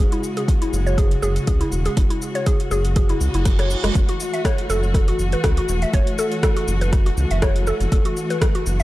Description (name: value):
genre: afro house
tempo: 121 BPM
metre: 4/4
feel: swing 54% on 16ths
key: F# minor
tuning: A4 = 435 Hz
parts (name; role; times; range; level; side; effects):
- dark chamber string section; sustained chords; 0.0-8.8 s; C#3 to F#4; -26 LUFS; left 2 dB; sidechain pumping
- mallet-like synth pluck; arpeggios; 0.0-8.8 s; G#3 to E5; -25 LUFS; equal; chorus, sidechain pumping, digital delay
- round analog bass; bass; 0.0-8.8 s; E1 to C#2; -21 LUFS; equal; sidechain pumping
- deep house drum kit; drums; 0.1-8.8 s; hi-hat, rim click, shaker; -28 LUFS; left 1 dB; overdrive, small room ambience
- electronic kick drum; drums; 0.5-8.5 s; none; -19 LUFS; equal; overdrive, small room ambience
- reverse cymbal; sound effects; 3.2-4.0 s; none; -32 LUFS; right 7 dB; none
room: little or no reverb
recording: dark, warm production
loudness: -17 LUFS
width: side -17 dB against mid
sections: 0.0-8.8 A section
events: filter sweep on synth pluck 0.0-8.8; reverse cymbal 3.2-4.0; drum fill 3.5-4.0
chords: 0.0 E6; 4.0 F#m7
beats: 0.48 0.98 1.48 | 1.97 2.47 2.96 3.46 | 3.95 4.45 4.95 5.44 | 5.94 6.43 6.93 7.42 | 7.92 8.42